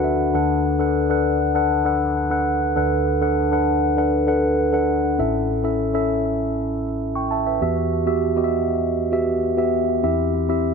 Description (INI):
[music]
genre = pop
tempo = 99 BPM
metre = 4/4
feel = straight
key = D major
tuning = A4 = 439 Hz
[part]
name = mellow tine electric piano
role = solo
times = 0.0-10.7 s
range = A1 to C#6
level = -18 LUFS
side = equal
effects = phaser, digital delay
[sound]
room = light reverb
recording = none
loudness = -18 LUFS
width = side -5 dB against mid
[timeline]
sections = 0.3-5.2 A section; 5.2-10.7 B section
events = tine electric piano fill 0.0-0.3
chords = 0.3 D6; 5.2 A; 7.6 Emadd9; 10.0 C/E